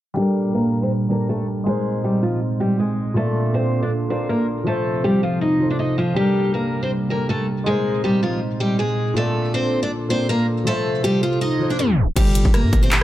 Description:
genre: hip hop, trap.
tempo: 160 BPM.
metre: 4/4.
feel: half-time.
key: G minor.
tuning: A4 = 439 Hz.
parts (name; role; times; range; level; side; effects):
dark baby grand piano; accompaniment; 0.1-12.2 s; Bb2 to D5; -25 LUFS; left 1 dB; low-pass filter.
picked steel-string acoustic guitar; melody; 0.2-12.9 s; F3 to Eb5; -21 LUFS; equal; low-pass filter.
dark analog pad; sustained chords; 0.2-13.0 s; Bb2 to A4; -24 LUFS; right 2 dB; lush chorus, low-pass filter.
reverse cymbal; sound effects; 11.5-12.2 s; none; -38 LUFS; right 5 dB; none.
long sustained 808-style bass; bass; 12.2-13.0 s; G1 to G2; -19 LUFS; equal; none.
trap drum kit; drums; 12.2-13.0 s; crash cymbal, handclaps, hi-hat, kick drum, rim click; -17 LUFS; equal; none.
room: light reverb.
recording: tape stop.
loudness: -18 LUFS.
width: side -14 dB against mid.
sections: 0.2-12.2 A section.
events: filter sweep 0.2-12.2; reverse cymbal 11.5-12.2; tape stop 11.8-12.2.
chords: 0.2 Gmadd9; 1.7 Abadd9; 3.2 Bbmaj7; 4.7 F; 6.2 Gmadd9; 7.7 Abadd9; 9.2 Bbmaj7; 10.7 F; 12.2 Gmadd9.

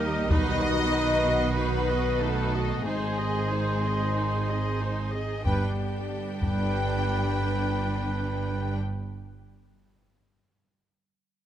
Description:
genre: cinematic, epic orchestral film score.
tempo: 94 BPM.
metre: 4/4.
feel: straight.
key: unclear.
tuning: A4 = 440 Hz.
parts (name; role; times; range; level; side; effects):
rich chamber viola section; accompaniment; 0.0-8.8 s; D4 to Eb5; -34 LUFS; equal; none.
clear trombone section; sustained chords; 0.0-8.8 s; D3 to Ab3; -36 LUFS; right 5 dB; none.
rich symphonic string section; sustained chords; 0.0-8.8 s; Bb3 to G5; -37 LUFS; left 1 dB; none.
warm trumpet; stabs; 0.0-8.8 s; Bb4 to C5; -34 LUFS; right 2 dB; none.
rich symphonic cello section; bass; 0.0-8.8 s; Eb2 to B2; -32 LUFS; right 3 dB; none.
rich symphonic double bass section; bass; 0.0-8.8 s; G1 to Eb2; -32 LUFS; right 2 dB; none.
warm symphonic violin section; melody; 0.3-8.8 s; Ab4 to G5; -36 LUFS; left 2 dB; none.
warm symphonic violin section; second line; 0.3-8.8 s; Ab4 to G5; -36 LUFS; left 3 dB; none.
mellow French horn section; sustained chords; 0.3-8.8 s; G3 to D#4; -33 LUFS; left 4 dB; none.
solo taiko drums; drums; 0.3-0.9, 5.5-6.7 s; none; -28 LUFS; left 1 dB; none.
timpani; percussion; 5.5-9.5 s; G2; -36 LUFS; left 1 dB; none.
room: moderate scoring stage reverb, RT60 2.0 s.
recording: close, detailed microphones.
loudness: -24 LUFS.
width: side -10 dB against mid.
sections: 0.0-5.4 A section; 5.4-8.0 B section.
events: none.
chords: 0.3 B; 2.8 Ab; 5.4 G.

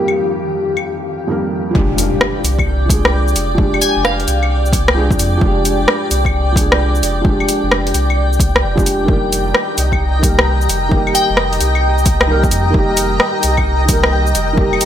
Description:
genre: future garage.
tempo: 131 BPM.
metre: 4/4.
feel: swing 66% on 16ths.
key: F dorian.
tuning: A4 = 440 Hz.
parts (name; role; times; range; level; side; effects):
felt-muted upright piano; accompaniment; 0.0-14.9 s; F2 to Bb4; -19 LUFS; right 1 dB; sidechain pumping, ping-pong delay.
granular cloud pad; sustained chords; 0.0-14.9 s; F2 to Bb5; -20 LUFS; left 1 dB; built-in reverb, sidechain pumping.
flickering grainy texture; texture; 0.0-1.8, 9.7-14.9 s; F4 to G5; -27 LUFS; left 1 dB; built-in reverb.
deep house drum kit; drums; 0.1-14.9 s; claves, hi-hat, rim click, shaker; -16 LUFS; equal; overdrive.
warm sub bass; bass; 1.8-14.7 s; F1 to F2; -17 LUFS; equal; sidechain pumping.
electronic kick drum; drums; 1.8-14.7 s; none; -17 LUFS; equal; overdrive.
impact; sound effects; 1.8-3.6 s; none; -26 LUFS; left 1 dB; none.
glassy wavetable pluck; melody; 3.8-4.4, 11.1-11.4 s; F5 to Ab5; -20 LUFS; left 2 dB; chorus, dub echo.
room: light reverb, digital ambience.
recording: none.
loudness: -12 LUFS.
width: side -10 dB against mid.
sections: 0.0-1.8 A section; 1.8-14.9 B section.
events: impact 1.8-3.6.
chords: 0.0 Eb/F; 1.8 Fm69; 9.1 Eb/F.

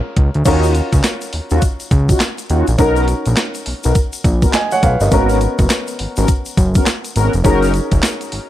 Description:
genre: R&B, new jack swing.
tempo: 103 BPM.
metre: 4/4.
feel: swing 61% on 16ths.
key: unclear.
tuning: A4 = 441 Hz.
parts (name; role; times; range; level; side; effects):
dark baby grand piano; accompaniment; 0.0-8.5 s; B3 to G#5; -20 LUFS; equal; none.
fat analog bass; bass; 0.2-8.4 s; E#1 to D#2; -15 LUFS; equal; none.
clean 12-bit digital drum machine; drums; 0.2-8.5 s; crash cymbal, handclaps, hi-hat, kick drum, snare drum; -16 LUFS; equal; overdrive.
mellow synth brass; stabs; 0.5-7.7 s; B3 to A#4; -21 LUFS; left 2 dB; chorus, tape echo.
tube shaker; percussion; 0.5-8.3 s; none; -30 LUFS; left 5 dB; none.
room: digital ambience.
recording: none.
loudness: -13 LUFS.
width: side -13 dB against mid.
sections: 0.5-8.5 A section.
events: none.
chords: 0.5 D#m9; 2.8 Bmaj7; 5.1 G#m11; 7.4 F#6.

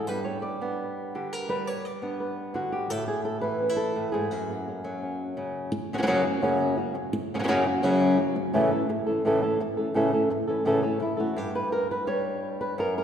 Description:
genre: flamenco.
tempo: 170 BPM.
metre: 4/4.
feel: straight.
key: unclear.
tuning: A4 = 440 Hz.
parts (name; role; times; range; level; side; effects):
flamenco guitar; solo; 0.0-13.0 s; F#2 to D5; -24 LUFS; equal; none.
room: wet concert hall reverb, RT60 2.1 s.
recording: recorded in a church or concert hall.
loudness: -24 LUFS.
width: side -8 dB against mid.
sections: 0.0-5.7 A section; 5.7-11.4 B section; 11.4-13.0 C section.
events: none.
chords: 0.1 G; 2.9 Asus2; 4.3 F#; 8.5 A; 11.4 N.C..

